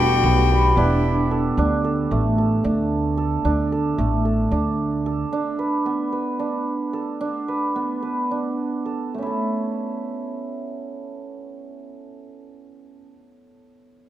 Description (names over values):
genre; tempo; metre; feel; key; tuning
contemporary instrumental, chamber music in an uneven meter; 220 BPM (eighths); 7/8; uneven beats; A mixolydian; A4 = 441 Hz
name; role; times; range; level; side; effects
warm violin; melody; 0.0-1.0 s; G5; -23 LUFS; left 12 dB; none
dark cello; second line; 0.0-1.3 s; E4 to F#4; -27 LUFS; right 8 dB; none
clear symphonic string section; sustained chords; 0.0-1.5 s; E3 to D4; -34 LUFS; left 1 dB; none
cimbalom; arpeggios; 0.0-13.6 s; A3 to B4; -23 LUFS; right 2 dB; none
upright bass; bass; 0.0-5.2 s; E1 to D2; -22 LUFS; equal; none
room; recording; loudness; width
light reverb; close, detailed microphones; -20 LUFS; side -12 dB against mid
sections
0.0-1.6 A section; 1.6-9.1 B section; 9.1-13.1 C section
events
slowing down 5.3-9.1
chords
0.0 Em7; 1.6 D5; 5.3 Bm7; 9.1 A